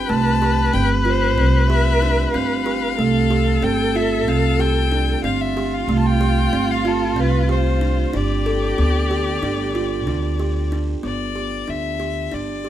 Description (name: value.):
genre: contemporary instrumental, chamber music in an uneven meter.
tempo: 186 BPM (eighths).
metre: 9/8.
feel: straight.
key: unclear.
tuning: A4 = 442 Hz.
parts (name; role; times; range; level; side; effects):
clear violin; melody; 0.0-12.7 s; A4 to A5; -25 LUFS; left 7 dB; none.
rich viola; second line; 0.0-10.7 s; F4 to B4; -24 LUFS; equal; none.
upright bass; bass; 0.0-12.7 s; G1 to D2; -21 LUFS; equal; none.
buzzing kalimba; arpeggios; 0.1-12.7 s; A3 to A4; -22 LUFS; right 4 dB; none.
room: light reverb.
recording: close, detailed microphones.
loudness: -17 LUFS.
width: side -11 dB against mid.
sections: 0.0-11.0 A section; 11.0-12.7 B section.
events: none.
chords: 0.0 Fadd9/G; 8.1 G5.